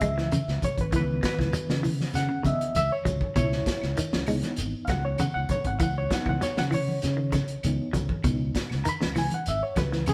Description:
afrobeat; 98 BPM; 4/4; straight; C# minor; A4 = 440 Hz
overdriven reed electric piano; accompaniment; 0.0-10.1 s; D#3 to B5; -32 LUFS; equal; fast tremolo
semi-hollow electric guitar; arpeggios; 0.0-10.1 s; B2 to G#3; -33 LUFS; equal; tremolo
fingered electric bass; bass; 0.0-10.0 s; G#1 to C#3; -33 LUFS; equal
crunchy breakbeat drum kit; drums; 0.0-10.1 s; hi-hat, kick drum, snare drum; -34 LUFS; equal
congas; percussion; 0.0-10.1 s; -36 LUFS; equal
shekere; percussion; 0.0-10.1 s; -39 LUFS; equal
claves; percussion; 3.4-10.1 s; -50 LUFS; equal
moderate stone room reverb, RT60 1.0 s; band playing live in one room; -27 LUFS; mono
0.0-10.1 A section
reed electric piano solo 0.0-10.1
0.0 C#m7

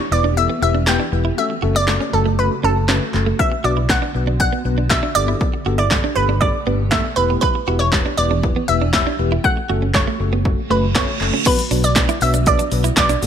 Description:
dance-pop; 119 BPM; 4/4; straight; B minor; A4 = 441 Hz
analog pluck; melody; 0.0-13.3 s; A4 to G5; -20 LUFS; right 1 dB; chorus, ping-pong delay
granular cloud pad; sustained chords; 0.0-13.3 s; B2 to G4; -29 LUFS; right 1 dB; built-in reverb, analog chorus, sidechain pumping
direct-recorded clean electric guitar; riff; 0.0-13.3 s; A3 to F#4; -25 LUFS; right 8 dB; wide subtle chorus
tine electric piano; accompaniment; 0.1-13.3 s; F#3 to D5; -25 LUFS; left 6 dB; wide subtle chorus, sidechain pumping
vintage muted fingered electric bass; bass; 0.1-13.3 s; E1 to B1; -20 LUFS; equal; sidechain pumping
punchy analog drum machine; drums; 0.9-13.3 s; crash cymbal, handclaps, hi-hat, kick drum, shaker, snare drum; -19 LUFS; equal
reverse cymbal; sound effects; 10.7-11.5 s; -26 LUFS; right 6 dB
light reverb; bright 1980s-style digital production; -15 LUFS; side -8 dB against mid
0.0-11.5 A section; 11.5-13.3 B section
reverse cymbal 10.7-11.5
0.0 Em; 1.4 F#m; 3.4 Bm; 5.2 Gadd9; 7.2 Em; 9.4 F#m; 11.5 Bm

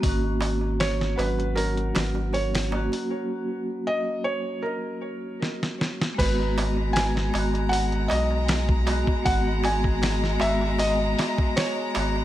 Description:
trip hop; 78 BPM; 4/4; straight; G# minor; A4 = 441 Hz
vibraphone with medium hard mallets; accompaniment; 0.0-12.2 s; F#3 to F#4; -29 LUFS; equal; harmonic tremolo, tape echo
round analog bass; bass; 0.0-12.2 s; G#1 to B1; -26 LUFS; equal
dusty soul sampler-style drum kit; drums; 0.0-12.1 s; crash cymbal, hi-hat, kick drum, snare drum; -27 LUFS; equal
darbuka; percussion; 0.0-12.2 s; -35 LUFS; right 3 dB
felt-muted upright piano; melody; 0.8-12.1 s; A#4 to G#5; -29 LUFS; right 1 dB; vintage 12-bit sampler grit, tape echo
rich chamber violin section; sustained chords; 6.2-12.2 s; G#3 to A#5; -31 LUFS; left 1 dB
light reverb, small room ambience; -22 LUFS; side -13 dB against mid
0.0-6.2 A section; 6.2-12.2 B section
break 3.1-6.2; drum fill 5.4-6.2
0.0 F#/G#; 6.2 G#m7

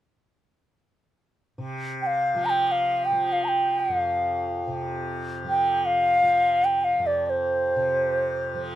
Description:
indian classical; free time; A4 = 442 Hz
tanpura; drone; 1.6-8.8 s; F2 to F3; -31 LUFS; equal
bansuri; melody; 2.0-8.6 s; C5 to Bb5; -21 LUFS; equal
little or no reverb; dark, warm production; -21 LUFS; side -13 dB against mid
1.6-8.8 A section

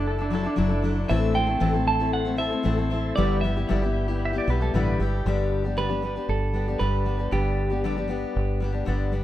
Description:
folk rock and heartland rock; 116 BPM; 4/4; straight; G major; A4 = 438 Hz
pedal steel guitar; second line; 0.0-1.0, 4.3-5.3 s; D4 to E5; -33 LUFS; right 3 dB; digital delay
picked steel-string acoustic guitar; accompaniment; 0.0-9.2 s; G2 to A4; -26 LUFS; left 5 dB
tonewheel organ; sustained chords; 0.0-5.2 s; E3 to A4; -38 LUFS; right 1 dB; chorus vibrato, slow rotary speaker
fingered electric bass; bass; 0.0-9.2 s; F#1 to B1; -26 LUFS; right 1 dB
clean electric guitar; melody; 1.1-7.8 s; G4 to A5; -29 LUFS; right 4 dB; digital delay
light reverb; rough home demo mix; -22 LUFS; side -13 dB against mid
0.0-5.3 A section; 5.3-9.2 B section
clean electric guitar solo 5.3-9.2
0.0 Dadd9/F#; 1.1 Am; 3.2 G6; 5.3 G

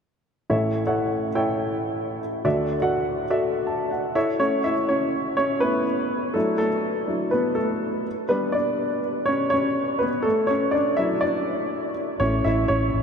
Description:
piano-driven pop; 123 BPM; 4/4; straight; A mixolydian; A4 = 440 Hz
warm baby grand piano; accompaniment; 0.5-13.0 s; A1 to A5; -21 LUFS; equal
vintage muted fingered electric bass; bass; 12.2-13.0 s; A1; -24 LUFS; right 1 dB
wet huge ambient reverb, RT60 7.3 s; dreamy mix soaked in reverb; -21 LUFS; side -6 dB against mid
0.5-4.4 A section; 4.4-13.0 B section
grand piano solo 4.4-13.0
0.5 A; 2.4 Dadd9; 4.2 A; 6.4 Dadd9; 8.1 G; 10.3 Dadd9; 12.2 A

